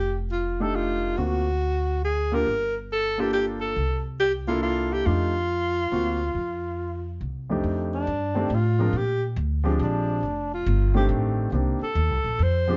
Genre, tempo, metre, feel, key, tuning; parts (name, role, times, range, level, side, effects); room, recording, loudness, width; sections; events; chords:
jazz, small-group swing and bop; 139 BPM; 3/4; swing 67% on 8ths; F mixolydian; A4 = 440 Hz
breathy alto saxophone; melody; 0.0-12.8 s; D4 to C5; -28 LUFS; equal; plate reverb
upright bass; bass; 0.0-12.8 s; F1 to Bb2; -29 LUFS; equal
warm grand piano; accompaniment; 0.6-12.8 s; F2 to Bb4; -30 LUFS; equal
light reverb; nothing above 7.5 kHz; -25 LUFS; mono
0.0-7.6 A section; 7.6-12.8 B section
alto saxophone solo 7.6-12.8
0.0 F13; 1.2 D7alt; 2.5 Gm7; 3.8 C13; 5.1 F13; 5.9 D7alt; 6.3 N.C.; 7.2 Csus2; 7.6 F13; 8.9 Bb13; 10.2 F13; 11.5 Cm7